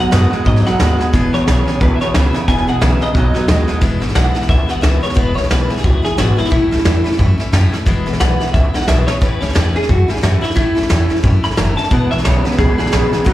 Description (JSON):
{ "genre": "rockabilly", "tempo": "178 BPM", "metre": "4/4", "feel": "swing 59% on 8ths", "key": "E major", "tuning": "A4 = 440 Hz", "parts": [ { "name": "clean electric guitar", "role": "melody", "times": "0.0-13.3 s", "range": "E4 to B5", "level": "-20 LUFS", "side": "equal", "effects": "ensemble chorus, slapback echo, tape echo" }, { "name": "picked steel-string acoustic guitar", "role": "accompaniment", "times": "0.0-13.3 s", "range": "E2 to G#4", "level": "-21 LUFS", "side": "left 2 dB", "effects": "slapback echo" }, { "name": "electric guitar through a small old amp", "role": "riff", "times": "0.0-3.8, 11.9-13.3 s", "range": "E2 to G#3", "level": "-18 LUFS", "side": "right 2 dB", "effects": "spring reverb, slapback echo" }, { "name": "upright bass", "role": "bass", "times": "0.0-13.3 s", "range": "E1 to G#2", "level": "-16 LUFS", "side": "equal", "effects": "none" }, { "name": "soft brush drum kit", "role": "drums", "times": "0.1-13.3 s", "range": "hi-hat, kick drum, snare drum", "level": "-18 LUFS", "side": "equal", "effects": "none" } ], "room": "small room reverb", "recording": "live gig heard through the venue's PA, club reverb", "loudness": "-12 LUFS", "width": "side -14 dB against mid", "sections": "0.0-3.8 A section; 3.8-13.3 B section", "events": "clean electric guitar solo 3.8-13.3; drum fill 9.1", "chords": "0.0 B; 1.1 E; 3.2 B; 3.8 E; 6.5 A; 7.9 E; 9.2 A; 11.9 E" }